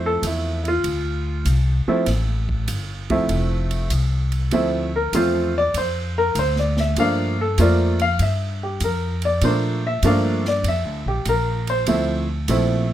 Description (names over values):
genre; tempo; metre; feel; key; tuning
jazz piano trio; 98 BPM; 4/4; swing 68% on 8ths; D minor; A4 = 438 Hz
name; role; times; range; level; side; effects
clear baby grand piano; melody; 0.0-12.9 s; F3 to F5; -21 LUFS; equal; none
upright bass; bass; 0.0-12.9 s; F1 to Bb2; -22 LUFS; equal; none
swinging big-band drum kit; drums; 0.2-12.7 s; hi-hat, kick drum, ride cymbal, snare drum; -31 LUFS; right 4 dB; none
room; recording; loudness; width
little or no reverb; close, detailed microphones; -18 LUFS; side -12 dB against mid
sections
0.0-12.9 A section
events
grand piano solo 0.0-12.9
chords
0.0 Dm7; 7.0 Gm7; 11.9 Dm7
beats
0.24 0.85 1.46 | 2.07 2.69 3.30 3.91 | 4.53 5.14 5.75 6.36 | 6.97 7.59 8.20 8.81 | 9.42 10.04 10.65 11.26 | 11.87 12.49